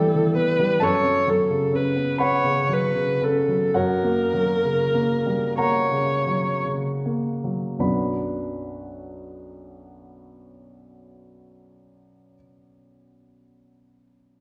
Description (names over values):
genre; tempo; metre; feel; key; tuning
classical, romantic duo for viola and grand piano; 24-45 BPM (dotted quarters); 12/8; rubato; B minor; A4 = 440 Hz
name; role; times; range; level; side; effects
warm viola; melody; 0.0-6.6 s; A4 to C#5; -24 LUFS; equal; none
warm grand piano; accompaniment; 0.0-14.4 s; B1 to B5; -26 LUFS; equal; none
room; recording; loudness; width
wet recital hall reverb, RT60 1.4 s; heard from further back in the room; -22 LUFS; mono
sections
0.0-7.8 A section; 7.8-14.4 B section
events
slowing down 0.0-7.8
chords
0.0 Em/G; 0.8 F#sus4; 3.8 F#; 7.8 Bm